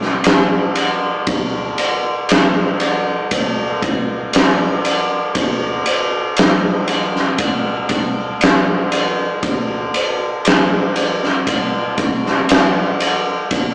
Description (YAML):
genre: metal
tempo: 59 BPM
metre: 4/4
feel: straight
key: none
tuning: none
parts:
  - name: big rock drum kit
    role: drums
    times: 0.0-13.7 s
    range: kick drum, ride cymbal, snare drum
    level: -14 LUFS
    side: equal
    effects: none
room: light reverb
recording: rough rehearsal-room recording, small speaker sound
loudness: -14 LUFS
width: side -31 dB against mid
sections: 0.0-13.7 A section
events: none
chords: none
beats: 0.25 | 1.27 2.29 3.31 4.33 | 5.35 6.37 7.39 8.41 | 9.43 10.45 11.47 12.49 | 13.51